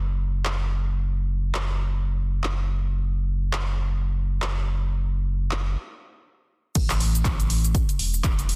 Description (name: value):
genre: afro house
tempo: 121 BPM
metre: 4/4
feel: swing 58% on 16ths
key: unclear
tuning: A4 = 440 Hz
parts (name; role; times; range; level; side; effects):
- warm sub bass; bass; 0.0-8.6 s; E1 to A1; -26 LUFS; equal; sidechain pumping
- deep house drum kit; drums; 0.5-8.6 s; cabasa, crash cymbal, handclaps, hi-hat; -33 LUFS; equal; overdrive, small room reverb
- electronic kick drum; drums; 6.8-8.4 s; none; -26 LUFS; equal; overdrive, small room reverb
room: digital ambience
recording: dense, heavily limited modern master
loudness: -25 LUFS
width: mono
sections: 0.0-6.8 A section; 6.8-8.6 B section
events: stop 5.8-6.8; drop 6.8-8.6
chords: none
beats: 0.31 | 0.80 1.30 1.79 2.29 | 2.79 3.28 3.78 4.27 | 4.77 5.27 5.76 6.26 | 6.75 7.25 7.75 8.24